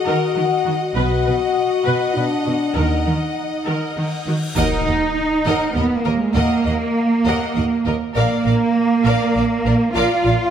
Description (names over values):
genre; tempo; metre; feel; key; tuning
cinematic, epic orchestral film score; 100 BPM; 3/4; straight; Eb harmonic minor; A4 = 440 Hz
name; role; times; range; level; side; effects
clear symphonic violin section; melody; 0.0-10.3 s; D5 to Gb5; -30 LUFS; left 4 dB; none
bright symphonic violin section; second line; 0.0-10.3 s; Bb4 to Eb5; -28 LUFS; left 2 dB; none
mellow French horn section; sustained chords; 0.0-10.2 s; D4 to F5; -22 LUFS; left 5 dB; none
rich symphonic viola section; accompaniment; 0.1-10.3 s; Gb4 to B4; -27 LUFS; right 1 dB; none
rich symphonic cello section; bass; 0.1-10.5 s; B2 to F4; -19 LUFS; right 2 dB; none
rich symphonic double bass section; bass; 1.0-10.3 s; Bb1 to Eb2; -22 LUFS; right 2 dB; none
cymbal swell and impact; sound effects; 4.1-6.4 s; none; -28 LUFS; left 1 dB; none
triangle; percussion; 4.6-5.7 s; none; barely audible; none; none
room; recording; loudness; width
wet scoring stage reverb, RT60 1.9 s; none; -16 LUFS; side -8 dB against mid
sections
0.0-4.6 A section; 4.6-10.5 A section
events
cymbal swell 4.1-4.6; impact 4.6-6.4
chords
0.0 Ebm; 1.0 B; 2.8 Ebm; 8.2 Bb